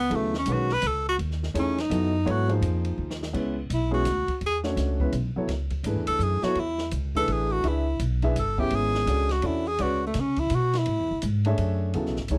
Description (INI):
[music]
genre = modal jazz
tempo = 167 BPM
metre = 3/4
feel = swing 63% on 8ths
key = G# phrygian, C# phrygian from 3.3 s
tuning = A4 = 439 Hz
[part]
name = clear tenor saxophone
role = melody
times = 0.0-11.2 s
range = A3 to B4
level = -28 LUFS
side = equal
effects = none
[part]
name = upright bass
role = bass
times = 0.0-12.4 s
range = G1 to C#3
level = -30 LUFS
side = equal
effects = none
[part]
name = warm grand piano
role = accompaniment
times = 0.1-12.4 s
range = C#3 to E5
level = -32 LUFS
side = equal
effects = none
[part]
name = open jazz drum kit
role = drums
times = 0.1-12.4 s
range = crash cymbal, hi-hat, kick drum, ride cymbal, snare drum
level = -39 LUFS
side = equal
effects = none
[sound]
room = small room ambience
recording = dry, close 1970s-style studio recording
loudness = -26 LUFS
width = mono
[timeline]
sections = 0.0-3.3 A section; 3.3-11.9 A section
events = tenor saxophone solo 0.0-11.9; drum fill 3.0-3.3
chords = 0.0 B; 2.3 G#7; 3.3 C#m7; 5.5 Aadd9/C#; 7.6 C#m7; 9.8 Aadd9/C#